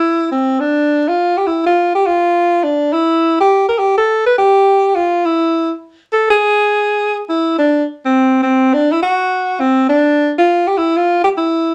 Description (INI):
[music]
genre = jazz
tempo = 207 BPM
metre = 4/4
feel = swing 62% on 8ths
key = unclear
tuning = A4 = 440 Hz
[part]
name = warm alto saxophone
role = solo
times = 0.0-11.7 s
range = C4 to B4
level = -14 LUFS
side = equal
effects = none
[sound]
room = wet studio ambience, RT60 0.5 s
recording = vinyl crackle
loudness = -14 LUFS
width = mono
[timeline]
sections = 0.0-11.7 A section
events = none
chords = none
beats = 0.02 0.31 | 0.60 0.89 1.18 1.47 | 1.76 2.05 2.33 2.62 | 2.92 3.21 3.50 3.79 | 4.08 4.37 4.66 4.95 | 5.24 5.53 5.82 6.11 | 6.40 6.69 6.98 7.27 | 7.56 7.85 8.14 8.43 | 8.72 9.01 9.30 9.60 | 9.89 10.18 10.47 10.76 | 11.05 11.34 11.63